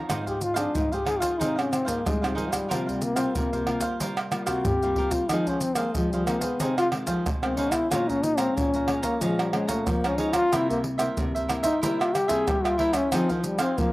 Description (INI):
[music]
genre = samba and choro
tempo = 92 BPM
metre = 4/4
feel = straight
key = F minor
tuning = A4 = 440 Hz
[part]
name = cavaquinho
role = accompaniment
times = 0.0-13.9 s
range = Eb4 to Bb5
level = -32 LUFS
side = right 3 dB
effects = slapback echo
[part]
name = nylon-string guitar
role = accompaniment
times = 0.0-13.9 s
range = F2 to Ab4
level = -35 LUFS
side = left 2 dB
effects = none
[part]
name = nylon-string guitar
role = bass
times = 0.1-13.9 s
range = Ab2 to G3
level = -31 LUFS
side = equal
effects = none
[part]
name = maracas, surdo, pandeiro and tamborim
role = percussion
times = 0.1-13.9 s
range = none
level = -29 LUFS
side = right 1 dB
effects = none
[part]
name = breathy trombone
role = melody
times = 0.3-13.9 s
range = C3 to Ab4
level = -26 LUFS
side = left 2 dB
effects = slapback echo
[sound]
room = light reverb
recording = recorded outdoors, with no room sound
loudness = -23 LUFS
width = side -18 dB against mid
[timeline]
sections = 0.0-13.9 A section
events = trombone solo 0.0-13.9; drum fill 4.5-5.3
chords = 0.1 Fm7/Ab; 2.7 C7sus4; 5.3 Fm7; 7.9 Bbm7; 10.5 C7; 13.1 Fm7